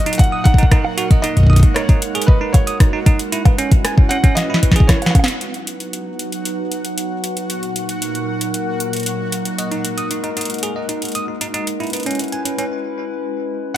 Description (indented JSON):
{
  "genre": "IDM",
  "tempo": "115 BPM",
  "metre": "4/4",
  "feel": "straight",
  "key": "unclear",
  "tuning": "A4 = 439 Hz",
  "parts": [
    { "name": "felt-muted upright piano", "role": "melody", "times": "0.0-5.2, 13.7-13.8 s", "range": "Cb5 to Gb5", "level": "-24 LUFS", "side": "left 1 dB", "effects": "digital delay" },
    { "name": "warbly tape-like pad", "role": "sustained chords", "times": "0.0-13.7 s", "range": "Bb2 to B4", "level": "-24 LUFS", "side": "right 1 dB", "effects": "chorus, built-in reverb, sidechain pumping" },
    { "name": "bell-like tine electric piano", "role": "arpeggios", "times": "0.0-5.2, 9.6-12.6 s", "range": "C#4 to Eb6", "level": "-24 LUFS", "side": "right 4 dB", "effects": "digital delay" },
    { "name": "booming analog drum machine", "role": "drums", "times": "0.0-12.7 s", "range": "bongos, hi-hat, rim click, snare drum", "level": "-22 LUFS", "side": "equal", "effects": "none" },
    { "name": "bubbling stepped-filter texture", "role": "texture", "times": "0.0-12.7 s", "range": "F#4 to F#5", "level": "-30 LUFS", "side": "left 2 dB", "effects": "chorus, built-in reverb, sidechain pumping" },
    { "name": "electronic kick drum", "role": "drums", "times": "0.2-5.3 s", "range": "none", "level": "-11 LUFS", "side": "equal", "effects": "none" }
  ],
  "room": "digital ambience",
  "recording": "none",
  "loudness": "-15 LUFS",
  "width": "side -12 dB against mid",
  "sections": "0.0-5.4 A section; 5.4-13.8 B section",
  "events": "drum fill 4.4-5.4; band accent 5.2; break 12.7-13.8",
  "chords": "0.0 Ebm/Bb; 1.2 Absus2; 3.3 E6/G#; 5.4 B; 7.5 Ebm/Bb; 9.6 Absus2; 11.7 E6/G#"
}